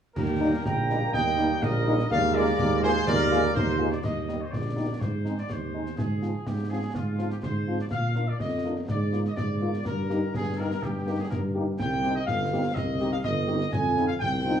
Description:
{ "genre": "military-style march for wind band", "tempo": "124 BPM", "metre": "2/4", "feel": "straight", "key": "Eb major", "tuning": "A4 = 440 Hz", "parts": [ { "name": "warm trumpet section", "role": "melody", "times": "0.2-14.6 s", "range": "F4 to Bb5", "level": "-30 LUFS", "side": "equal", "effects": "none" }, { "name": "small flute group", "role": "second line", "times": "0.2-3.8 s", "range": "G4 to G5", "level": "-31 LUFS", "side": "right 4 dB", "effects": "none" }, { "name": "warm trombone section", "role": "sustained chords", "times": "0.2-3.8 s", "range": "G3 to Bb3", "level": "-32 LUFS", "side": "right 2 dB", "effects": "none" }, { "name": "mellow tuba", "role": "bass", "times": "0.2-14.6 s", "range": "G1 to Bb2", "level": "-28 LUFS", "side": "right 2 dB", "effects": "none" }, { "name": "concert snare drum, clash cymbals and concert bass drum", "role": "drums", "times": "0.2-14.6 s", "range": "none", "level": "-33 LUFS", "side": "left 1 dB", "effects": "none" }, { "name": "warm French horn section", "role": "accompaniment", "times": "0.4-14.5 s", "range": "F3 to G4", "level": "-31 LUFS", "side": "left 3 dB", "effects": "none" } ], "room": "moderate large studio reverb, RT60 1.0 s", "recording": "worn, warbling old tape, cassette tape, warbly pitch drift, small room ambience", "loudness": "-24 LUFS", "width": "side -8 dB against mid", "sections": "0.2-4.0 A section; 4.0-14.6 B section", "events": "none", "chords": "0.2 Eb; 2.1 Bb7/Eb; 4.0 Eb; 5.0 Ab; 6.0 Fm/Ab; 7.9 Bb; 8.9 Bb7/Ab; 9.9 Eb/G; 11.8 Cm; 13.7 F5", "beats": "| 0.17 0.66 | 1.14 1.62 | 2.11 2.59 | 3.08 3.56 | 4.04 4.53 | 5.01 5.49 | 5.98 6.46 | 6.95 7.43 | 7.92 8.40 | 8.88 9.37 | 9.85 10.34 | 10.82 11.30 | 11.79 12.27 | 12.76 13.24 | 13.73 14.21" }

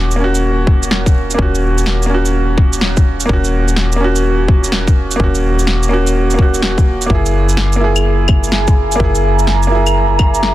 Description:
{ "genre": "future garage", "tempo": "126 BPM", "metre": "4/4", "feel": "swing 65% on 16ths", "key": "Eb phrygian", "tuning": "A4 = 445 Hz", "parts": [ { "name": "clear upright piano", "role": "accompaniment", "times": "0.0-10.5 s", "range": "Bb3 to Ab4", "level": "-16 LUFS", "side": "right 2 dB", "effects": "sidechain pumping, tape echo" }, { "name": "soft 808-style bass", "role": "bass", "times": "0.0-10.5 s", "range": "Eb1 to Gb1", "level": "-16 LUFS", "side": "left 1 dB", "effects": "tube saturation, sidechain pumping" }, { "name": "electronic shaker, snare drum and claves", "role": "drums", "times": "0.1-10.5 s", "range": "none", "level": "-19 LUFS", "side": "equal", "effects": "none" }, { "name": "electronic kick drum", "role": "drums", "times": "0.7-10.3 s", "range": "none", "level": "-12 LUFS", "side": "left 1 dB", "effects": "none" }, { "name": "deep dark ambient pad", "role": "sustained chords", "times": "8.3-10.5 s", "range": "Fb5 to Bb5", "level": "-18 LUFS", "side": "right 3 dB", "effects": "chorus, built-in reverb, sidechain pumping" } ], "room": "little or no reverb", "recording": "dense, heavily limited modern master", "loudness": "-11 LUFS", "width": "side -15 dB against mid", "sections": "0.0-10.5 A section", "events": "none", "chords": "0.0 Ebm7; 7.1 Gb9", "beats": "0.43 0.91 | 1.39 1.86 2.34 2.81 | 3.29 3.77 4.24 4.72 | 5.20 5.67 6.15 6.62 | 7.10 7.58 8.05 8.53 | 9.01 9.48 9.96 10.43" }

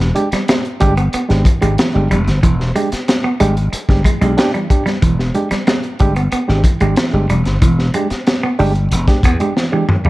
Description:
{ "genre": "funk", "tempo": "92 BPM", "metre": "4/4", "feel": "straight", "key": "unclear", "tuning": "A4 = 440 Hz", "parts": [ { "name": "barky reed electric piano", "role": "stabs", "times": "0.0-10.0 s", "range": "E3 to G4", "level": "-20 LUFS", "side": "right 2 dB", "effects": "overdrive, fast tremolo" }, { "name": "slap bass", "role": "bass", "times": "0.0-9.4 s", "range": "E1 to E2", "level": "-15 LUFS", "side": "equal", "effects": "none" }, { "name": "crunchy breakbeat drum kit", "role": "drums", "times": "0.0-10.1 s", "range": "hi-hat, kick drum, snare drum, toms", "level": "-16 LUFS", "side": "equal", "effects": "none" }, { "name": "clean electric guitar", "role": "riff", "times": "0.2-10.1 s", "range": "E3 to D4", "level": "-21 LUFS", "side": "right 1 dB", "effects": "none" } ], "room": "light reverb", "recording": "dark, warm production", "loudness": "-12 LUFS", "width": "side -18 dB against mid", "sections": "0.0-10.1 A section", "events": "drum fill 9.6-10.1", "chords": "0.0 E7#9", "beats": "0.48 1.13 1.78 | 2.43 3.08 3.73 4.38 | 5.02 5.67 6.32 6.97 | 7.62 8.26 8.91 9.56" }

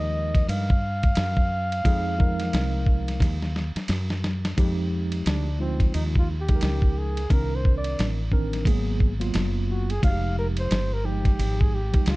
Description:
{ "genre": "hip hop, jazz-hop", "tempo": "88 BPM", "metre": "4/4", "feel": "swing 60% on 16ths", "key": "F phrygian, F dorian from 4.6 s", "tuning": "A4 = 440 Hz", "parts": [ { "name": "breathy flugelhorn", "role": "melody", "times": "0.0-12.2 s", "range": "C4 to F5", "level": "-31 LUFS", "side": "equal", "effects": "none" }, { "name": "mellow tine electric piano", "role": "accompaniment", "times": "0.0-12.2 s", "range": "Eb3 to Bb4", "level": "-31 LUFS", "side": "right 1 dB", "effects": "medium stereo tremolo" }, { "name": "woody fretless electric bass", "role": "bass", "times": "0.0-12.2 s", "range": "F1 to G2", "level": "-26 LUFS", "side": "equal", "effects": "none" }, { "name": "dusty soul sampler-style drum kit", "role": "drums", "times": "0.3-12.2 s", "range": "hi-hat, kick drum, ride cymbal, snare drum", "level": "-24 LUFS", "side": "equal", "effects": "vintage 12-bit sampler grit" } ], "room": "little or no reverb", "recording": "dark, warm production", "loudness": "-21 LUFS", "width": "side -21 dB against mid", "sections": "0.0-4.6 A section; 4.6-12.2 B section", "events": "drum fill 3.2-4.6; flugelhorn solo 4.6-12.2", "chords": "0.0 Fm9; 7.3 Cm9; 8.7 Abm9; 10.0 Fm9", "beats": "0.48 1.17 | 1.85 2.53 3.21 3.89 | 4.57 5.26 5.94 6.62 | 7.30 7.98 8.66 9.35 | 10.03 10.71 11.39 12.07" }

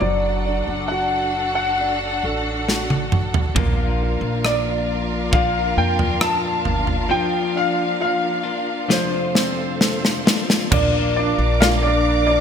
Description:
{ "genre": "pop ballad", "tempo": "67 BPM", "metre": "4/4", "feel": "straight", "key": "Bb major", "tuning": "A4 = 443 Hz", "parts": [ { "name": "clear concert grand piano", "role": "melody", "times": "0.0-12.4 s", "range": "D4 to A5", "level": "-22 LUFS", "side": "equal", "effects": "analog chorus" }, { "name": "warm concert grand piano", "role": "accompaniment", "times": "0.0-12.4 s", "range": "F3 to A4", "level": "-27 LUFS", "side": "left 1 dB", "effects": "none" }, { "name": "warm studio string section", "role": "sustained chords", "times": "0.0-12.4 s", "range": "F3 to D6", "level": "-26 LUFS", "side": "equal", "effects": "none" }, { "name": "upright bass", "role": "bass", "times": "0.0-12.4 s", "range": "F#1 to F2", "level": "-24 LUFS", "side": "right 1 dB", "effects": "none" }, { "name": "modern studio drum kit", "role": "drums", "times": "2.7-11.8 s", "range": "crash cymbal, kick drum, rim click, snare drum, toms", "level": "-19 LUFS", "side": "equal", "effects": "gated reverb" }, { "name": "direct-recorded clean electric guitar", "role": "arpeggios", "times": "3.5-12.4 s", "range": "F2 to F4", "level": "-28 LUFS", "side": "left 6 dB", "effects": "ping-pong delay" }, { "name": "warm French horn section", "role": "second line", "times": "10.7-12.4 s", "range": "D4", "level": "-27 LUFS", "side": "left 2 dB", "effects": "none" } ], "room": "light reverb, small room ambience", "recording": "bright 1980s-style digital production", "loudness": "-17 LUFS", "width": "side -7 dB against mid", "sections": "0.0-10.7 A section; 10.7-12.4 B section", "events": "drum fill 2.7-3.6, 8.9-10.7", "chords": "0.0 D/F#; 3.6 Bb; 7.1 Bb/F; 8.9 F6; 10.7 Bb", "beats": "| 0.02 0.91 1.79 2.68 | 3.56 4.44 5.33 6.21 | 7.11 8.00 8.90 9.81 | 10.72 11.62" }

